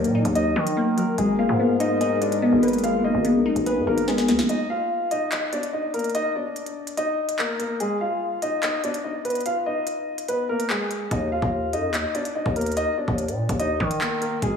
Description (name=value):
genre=hip hop, drill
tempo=145 BPM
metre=4/4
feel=half-time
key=Eb harmonic minor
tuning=A4 = 436 Hz
part: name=dark upright piano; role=melody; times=0.0-14.6 s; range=Ab3 to F5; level=-25 LUFS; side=left 1 dB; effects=low-pass filter, analog delay
part: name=glassy wavetable pluck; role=accompaniment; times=0.0-4.5 s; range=Eb3 to Eb5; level=-22 LUFS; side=left 1 dB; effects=chorus, low-pass filter
part: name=hollow soft pad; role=sustained chords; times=0.0-4.5 s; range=Eb3 to Bb4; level=-28 LUFS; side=left 2 dB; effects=chorus
part: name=growling 808-style bass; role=bass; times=0.0-4.5, 11.1-14.6 s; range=Ab1 to Eb3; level=-27 LUFS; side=equal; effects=none
part: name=drill drum kit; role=drums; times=0.0-14.5 s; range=handclaps, hi-hat, kick drum, snare drum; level=-30 LUFS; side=equal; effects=none
part: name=riser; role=sound effects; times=14.4-14.6 s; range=none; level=barely audible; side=none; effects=none
room=wet lush hall reverb, RT60 1.8 s, digital ambience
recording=dreamy mix soaked in reverb, small room reverb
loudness=-21 LUFS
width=side -6 dB against mid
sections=0.0-4.5 A section; 4.5-14.6 B section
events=drum fill 4.1-4.5; break 4.5-11.1; kick muted 9.5-11.1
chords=0.0 Ebm; 1.2 Abmadd9; 4.5 Eb5; 7.8 Ab5; 11.1 Eb5